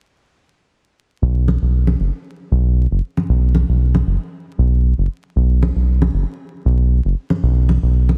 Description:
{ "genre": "deep house", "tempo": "116 BPM", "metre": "4/4", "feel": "swing 53% on 16ths", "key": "unclear", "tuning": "A4 = 441 Hz", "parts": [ { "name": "round analog bass", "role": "bass", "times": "1.2-8.2 s", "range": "F#1 to B1", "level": "-16 LUFS", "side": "equal", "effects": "none" }, { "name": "congas", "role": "percussion", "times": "1.5-8.2 s", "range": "none", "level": "-24 LUFS", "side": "equal", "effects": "none" } ], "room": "small room ambience", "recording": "dense, heavily limited modern master, vinyl crackle", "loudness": "-17 LUFS", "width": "mono", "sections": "1.2-8.2 A section", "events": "none", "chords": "none" }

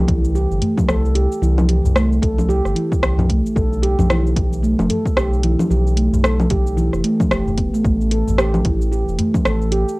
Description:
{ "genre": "organic downtempo", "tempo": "112 BPM", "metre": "4/4", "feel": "swing 59% on 16ths", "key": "unclear", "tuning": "A4 = 440 Hz", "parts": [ { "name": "round analog bass", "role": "bass", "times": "0.0-9.8 s", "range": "E1 to C2", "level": "-18 LUFS", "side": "equal", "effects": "tube saturation, sidechain pumping" }, { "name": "handpan", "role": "arpeggios", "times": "0.1-9.9 s", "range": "E3 to A4", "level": "-20 LUFS", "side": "right 1 dB", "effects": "cassette tape, analog delay" }, { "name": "deep house drum kit", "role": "drums", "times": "0.1-10.0 s", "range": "cabasa, congas, hi-hat, rim click", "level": "-21 LUFS", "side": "equal", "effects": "overdrive, cassette tape" }, { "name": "electronic kick drum", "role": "drums", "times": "0.1-9.4 s", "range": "none", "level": "-21 LUFS", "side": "equal", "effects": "overdrive, cassette tape" }, { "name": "udu", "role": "percussion", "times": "0.6-9.3 s", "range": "none", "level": "-23 LUFS", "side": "left 2 dB", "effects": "none" } ], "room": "moderate studio reverb, RT60 0.5 s", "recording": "home recording on cassette", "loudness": "-15 LUFS", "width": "side -22 dB against mid", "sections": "0.0-10.0 A section", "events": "none", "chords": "0.0 C6; 3.6 Fadd9(#11); 7.8 A5" }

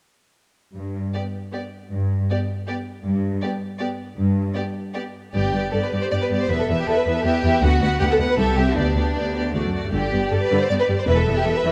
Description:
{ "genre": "quick classical-period movement for string orchestra", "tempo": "157 BPM", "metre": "3/4", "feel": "rubato", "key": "G major", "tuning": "A4 = 440 Hz", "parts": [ { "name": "rich studio cello section", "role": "bass", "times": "0.8-11.7 s", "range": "C2 to G2", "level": "-26 LUFS", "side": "equal", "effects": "none" }, { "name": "rich symphonic violin section", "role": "melody", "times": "1.1-11.7 s", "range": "D5 to F#5", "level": "-31 LUFS", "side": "equal", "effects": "none" }, { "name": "rich symphonic violin section", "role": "second line", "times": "1.1-11.7 s", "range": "D4 to D5", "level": "-26 LUFS", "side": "equal", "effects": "none" }, { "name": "clear symphonic viola section", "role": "accompaniment", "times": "1.1-11.7 s", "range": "D3 to B4", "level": "-29 LUFS", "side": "equal", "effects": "none" }, { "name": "rich symphonic double bass section", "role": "bass", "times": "5.3-11.2 s", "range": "E1 to D2", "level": "-27 LUFS", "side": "equal", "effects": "none" } ], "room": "moderate scoring stage reverb, RT60 1.9 s", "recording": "dark, warm production", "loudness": "-22 LUFS", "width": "mono", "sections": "0.8-5.3 A section; 5.3-11.7 B section", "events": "none", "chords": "0.8 G; 6.5 Em; 7.6 Bm/D; 8.4 C; 8.8 G/D; 9.5 D; 9.9 G; 11.1 E5" }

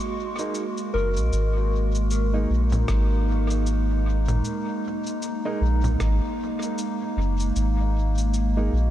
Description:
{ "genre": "ambient dub", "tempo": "77 BPM", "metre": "4/4", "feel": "swing 59% on 16ths", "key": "unclear", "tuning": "A4 = 440 Hz", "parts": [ { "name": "warbly tape-like pad", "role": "sustained chords", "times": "0.0-8.9 s", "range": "Ab3 to Gb4", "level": "-28 LUFS", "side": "right 1 dB", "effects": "chorus, built-in reverb" }, { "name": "soft synth bell", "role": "arpeggios", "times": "0.0-8.9 s", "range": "Bb4 to Db6", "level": "-33 LUFS", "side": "left 4 dB", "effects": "chorus, phaser, dub echo" }, { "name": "dark upright piano", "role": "stabs", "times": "0.4-8.7 s", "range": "Ab3 to Eb4", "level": "-36 LUFS", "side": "right 2 dB", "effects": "dub echo" }, { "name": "electronic cabasa, congas and rim click", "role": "drums", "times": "0.4-8.5 s", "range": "none", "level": "-34 LUFS", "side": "equal", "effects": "studio reverb, dub echo" }, { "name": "soft dub sub bass", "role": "bass", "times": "0.9-8.9 s", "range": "Gb1 to Bb1", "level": "-22 LUFS", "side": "equal", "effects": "none" }, { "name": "electronic kick drum", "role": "drums", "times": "2.9-6.2 s", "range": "none", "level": "-31 LUFS", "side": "equal", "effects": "none" } ], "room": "light reverb", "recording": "none", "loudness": "-22 LUFS", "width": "side -12 dB against mid", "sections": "0.0-8.9 A section", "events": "none", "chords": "0.0 Absus2" }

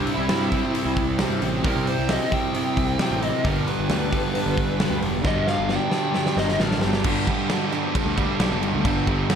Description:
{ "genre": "quiet-loud alternative rock", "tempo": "133 BPM", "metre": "4/4", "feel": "straight", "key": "unclear", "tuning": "A4 = 440 Hz", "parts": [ { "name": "dark smooth lead guitar", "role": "melody", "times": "0.0-7.0 s", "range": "D4 to G5", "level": "-28 LUFS", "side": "left 2 dB", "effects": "overdrive, plate reverb" }, { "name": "electric guitar through a small old amp", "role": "arpeggios", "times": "0.0-7.0 s", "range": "G2 to E4", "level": "-30 LUFS", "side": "right 1 dB", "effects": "ensemble chorus, plate reverb" }, { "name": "distorted electric guitar", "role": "riff", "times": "0.0-9.4 s", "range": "G2 to C4", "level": "-29 LUFS", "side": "left 11 dB", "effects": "distortion" }, { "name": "fuzz guitar", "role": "riff", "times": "0.0-9.4 s", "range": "G2 to C4", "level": "-27 LUFS", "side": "right 10 dB", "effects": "distortion" }, { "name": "fuzz picked electric bass", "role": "bass", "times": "0.0-9.4 s", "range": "E1 to C3", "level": "-28 LUFS", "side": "equal", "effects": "overdrive" }, { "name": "big rock drum kit", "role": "drums", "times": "0.1-9.4 s", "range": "crash cymbal, hi-hat, kick drum, snare drum", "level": "-26 LUFS", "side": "equal", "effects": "none" }, { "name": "tonewheel organ", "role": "sustained chords", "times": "7.0-9.4 s", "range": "G4 to E5", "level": "-36 LUFS", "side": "equal", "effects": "none" } ], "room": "light reverb, small room ambience", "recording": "none", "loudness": "-20 LUFS", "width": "side -7 dB against mid", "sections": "0.0-7.0 A section; 7.0-9.4 B section", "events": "lead electric guitar solo 0.0-7.0; drum fill 5.2-7.0", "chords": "0.0 C; 3.4 G" }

